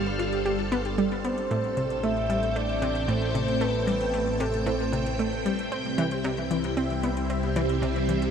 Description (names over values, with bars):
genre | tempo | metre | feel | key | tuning
ambient, sequencer-driven space music | 114 BPM | 4/4 | straight | unclear | A4 = 441 Hz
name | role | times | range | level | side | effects
phased string machine | sustained chords | 0.0-8.3 s | A2 to G5 | -28 LUFS | equal | ensemble chorus, phaser
analog pluck | riff | 0.0-8.3 s | A2 to G4 | -29 LUFS | equal | chorus, ping-pong delay
fat analog bass | bass | 0.0-8.3 s | G1 | -32 LUFS | equal | none
electronic hi-hat and woodblock | percussion | 0.1-8.3 s | none | -46 LUFS | equal | overdrive, ping-pong delay
soft octave-layered synth lead | melody | 1.2-5.5 s | A4 to E5 | -31 LUFS | equal | chorus, ping-pong delay
room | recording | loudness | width
wet huge ambient reverb, RT60 7.5 s | none | -24 LUFS | side -7 dB against mid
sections
0.0-8.3 A section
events
fade-in on drum 0.0-8.3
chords
0.0 G7sus4; 1.5 Am7; 5.7 C